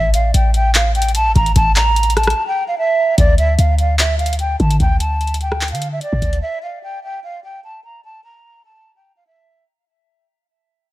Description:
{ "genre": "hip hop, trap", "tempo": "148 BPM", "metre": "4/4", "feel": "half-time", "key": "D minor", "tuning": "A4 = 439 Hz", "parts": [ { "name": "breathy hollow jazz flute", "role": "melody", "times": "0.0-9.6 s", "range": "D5 to Bb5", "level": "-19 LUFS", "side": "right 1 dB", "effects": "low-pass filter, ping-pong delay" }, { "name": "clean 808-style bass", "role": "bass", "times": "0.0-6.4 s", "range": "A1 to D3", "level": "-16 LUFS", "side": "equal", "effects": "none" }, { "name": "booming analog drum machine", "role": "drums", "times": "0.1-6.4 s", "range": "handclaps, hi-hat, kick drum, rim click", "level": "-17 LUFS", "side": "equal", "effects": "none" } ], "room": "digital ambience", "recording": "none", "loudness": "-13 LUFS", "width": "side -16 dB against mid", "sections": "0.0-3.2 A section; 3.2-9.7 B section", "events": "break 2.4-3.2; fade-out 3.2-9.7", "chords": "0.0 A5; 3.2 D5; 6.4 N.C.", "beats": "0.34 0.75 1.15 | 1.56 1.96 2.37 2.77 | 3.18 3.58 3.99 4.40 | 4.80 5.21 5.61 6.02 | 6.42 6.83 7.23 7.64 | 8.04 8.45 8.86 9.26" }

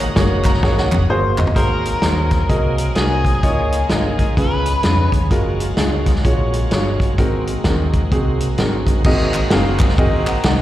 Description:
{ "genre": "uptempo gospel", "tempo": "128 BPM", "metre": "4/4", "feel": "swing 62% on 8ths", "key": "unclear", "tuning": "A4 = 440 Hz", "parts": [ { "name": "warm concert grand piano", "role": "accompaniment", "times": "0.0-10.6 s", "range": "Ab2 to Bb5", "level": "-21 LUFS", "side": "equal", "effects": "slapback echo" }, { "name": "bright tonewheel organ", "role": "sustained chords", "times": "0.0-10.6 s", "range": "Eb3 to Eb5", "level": "-27 LUFS", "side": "right 2 dB", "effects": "chorus vibrato, stopped rotary speaker" }, { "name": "hollow-body short-scale fingered electric bass", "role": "bass", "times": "0.0-10.6 s", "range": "F1 to F2", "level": "-20 LUFS", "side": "equal", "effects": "none" }, { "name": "natural country drum kit", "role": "drums", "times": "0.2-10.6 s", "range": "crash cymbal, hi-hat, kick drum, ride cymbal, snare drum, toms", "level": "-18 LUFS", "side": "equal", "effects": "none" }, { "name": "group handclap", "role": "percussion", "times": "0.4-1.5, 9.3-10.4 s", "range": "none", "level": "-29 LUFS", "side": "right 1 dB", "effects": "slapback echo" }, { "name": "overdriven slide guitar", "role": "melody", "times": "1.6-5.1 s", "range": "Ab4 to Cb5", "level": "-22 LUFS", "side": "left 2 dB", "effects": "slapback echo" } ], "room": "small room reverb", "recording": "live gig heard through the venue's PA, recital hall reverb", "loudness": "-14 LUFS", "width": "side -14 dB against mid", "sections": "0.0-1.6 A section; 1.6-9.1 B section; 9.1-10.6 A section", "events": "tonewheel organ solo 0.0-1.6; grand piano fill 0.2-1.6; drum fill 0.6-1.6", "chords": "0.0 Ab9sus4; 1.6 Ab9; 3.4 Db69; 4.4 Db7; 5.3 Gbmaj9; 7.2 Ab9", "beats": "0.17 0.63 1.10 | 1.56 2.03 2.50 2.97 | 3.44 3.90 4.37 4.84 | 5.31 5.78 6.25 6.72 | 7.18 7.65 8.12 8.59 | 9.05 9.52 9.98 10.45" }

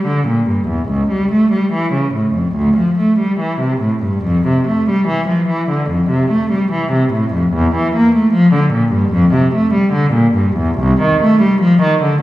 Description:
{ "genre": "classical, baroque-style suite movement for unaccompanied cello", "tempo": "73 BPM", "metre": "4/4", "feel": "rubato", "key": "unclear", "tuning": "A4 = 439 Hz", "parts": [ { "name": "rich cello", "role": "solo", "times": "0.0-12.2 s", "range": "C2 to Bb3", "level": "-12 LUFS", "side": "equal", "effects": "none" } ], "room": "wet recital hall reverb, RT60 1.6 s", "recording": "heard from further back in the room", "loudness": "-12 LUFS", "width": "side -16 dB against mid", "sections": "0.0-12.2 A section", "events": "none", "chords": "none", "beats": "0.06 | 0.90 1.73 2.56 3.39 | 4.24 5.07 5.89 6.71 | 7.53 8.33 9.13 9.93 | 10.78 11.62" }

